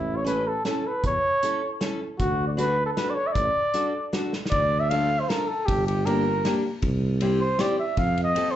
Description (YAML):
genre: alpine folk, alpine dance band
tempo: 156 BPM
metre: 3/4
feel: straight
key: D major, D minor from 4.5 s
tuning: A4 = 440 Hz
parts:
  - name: warm flugelhorn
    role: melody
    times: 0.0-8.6 s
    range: E4 to F5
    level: -24 LUFS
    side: equal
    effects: slapback echo
  - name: dark tuba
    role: bass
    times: 0.0-8.3 s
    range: G1 to F2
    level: -26 LUFS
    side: equal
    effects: none
  - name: fingerpicked steel-string acoustic guitar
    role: accompaniment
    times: 0.2-8.5 s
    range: Bb3 to A4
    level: -29 LUFS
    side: left 2 dB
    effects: slapback echo
  - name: loose indie drum kit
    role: drums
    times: 0.3-8.5 s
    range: hi-hat, kick drum, ride cymbal, snare drum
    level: -30 LUFS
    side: equal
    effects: none
room: moderate club reverb, RT60 0.8 s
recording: live gig heard through the venue's PA, club reverb, nothing above 8.0 kHz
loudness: -22 LUFS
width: side -11 dB against mid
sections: 0.0-4.5 A section; 4.5-8.6 B section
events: drum fill 4.3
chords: 0.0 A; 2.2 D; 4.5 Dm; 5.7 Gm; 6.8 C; 8.0 F7